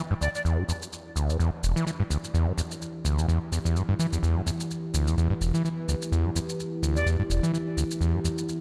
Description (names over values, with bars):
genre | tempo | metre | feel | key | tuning
acid house | 127 BPM | 4/4 | swing 55% on 16ths | E minor | A4 = 440 Hz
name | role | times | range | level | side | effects
dark analog pad | sustained chords | 0.3-8.6 s | E3 to E5 | -36 LUFS | equal | chorus, phaser
overdriven acid bass | riff | 0.0-8.3 s | E1 to E3 | -28 LUFS | equal | none
breathy bright jazz flute | melody | 0.2-0.4, 7.0-7.1 s | D5 | -36 LUFS | equal | tape echo
shaker | drums | 0.2-8.6 s | none | -39 LUFS | equal | overdrive
room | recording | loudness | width
light reverb | dark, warm production | -27 LUFS | mono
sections
0.0-8.6 A section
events
none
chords
0.0 Em